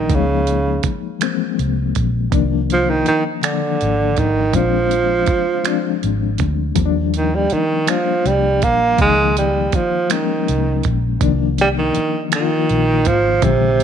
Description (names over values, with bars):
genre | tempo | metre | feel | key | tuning
slow six-eight R&B | 54 BPM (dotted quarters) | 6/8 | straight | C minor | A4 = 443 Hz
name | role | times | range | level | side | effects
breathy tenor saxophone | melody | 0.0-13.8 s | C3 to Bb3 | -17 LUFS | right 3 dB | none
reed electric piano | accompaniment | 0.0-13.8 s | D3 to F4 | -21 LUFS | left 16 dB | fast tremolo
vintage muted fingered electric bass | bass | 0.0-13.8 s | Ab1 to Eb2 | -20 LUFS | equal | none
dusty soul sampler-style drum kit | drums | 0.1-13.8 s | finger snaps, hi-hat, kick drum | -22 LUFS | right 4 dB | overdrive
room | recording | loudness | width
light reverb | 1960s-style stereo | -15 LUFS | side -8 dB against mid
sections
0.0-13.8 A section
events
none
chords
0.1 Db69; 2.3 Cm11; 4.5 Bb7; 6.8 Ebmaj7; 9.0 Db69; 11.2 Cm11